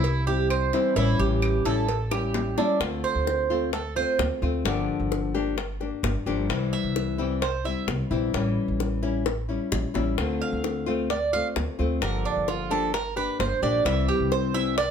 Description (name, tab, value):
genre	latin, Cuban son and guajira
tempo	130 BPM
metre	4/4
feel	straight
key	D minor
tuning	A4 = 441 Hz
part	nylon-string guitar	accompaniment	0.0-14.8 s	C3 to G4	-28 LUFS	left 5 dB	none
part	Cuban tres	arpeggios	0.0-14.9 s	D4 to F5	-26 LUFS	right 6 dB	none
part	upright bass	bass	0.0-14.9 s	G1 to D2	-28 LUFS	equal	none
part	cowbell and bongos	percussion	0.0-14.9 s	none	-31 LUFS	left 5 dB	none
part	claves	percussion	0.5-2.3 s	none	-35 LUFS	right 2 dB	none
room	moderate studio reverb, RT60 0.8 s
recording	none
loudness	-23 LUFS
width	side -7 dB against mid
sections	0.0-2.8 A section; 2.8-14.9 B section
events	drum fill 2.1-2.8, 9.3-10.2; Cuban tres solo 2.8-14.9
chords	0.0 C; 1.0 A7; 2.8 Dm7; 4.7 Gm7; 6.5 C; 8.3 A7; 10.2 Dm7; 12.0 Gm7; 13.9 C